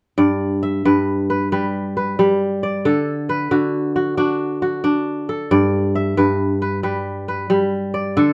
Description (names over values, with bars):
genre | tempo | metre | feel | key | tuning
west african traditional | 90 BPM (dotted quarters) | 12/8 | straight | G major | A4 = 440 Hz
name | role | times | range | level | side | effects
kora | arpeggios | 0.2-8.3 s | G2 to E5 | -19 LUFS | equal | none
room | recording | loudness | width
light reverb | none | -19 LUFS | mono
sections
0.2-8.3 A section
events
none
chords
0.2 G; 2.8 D; 5.5 G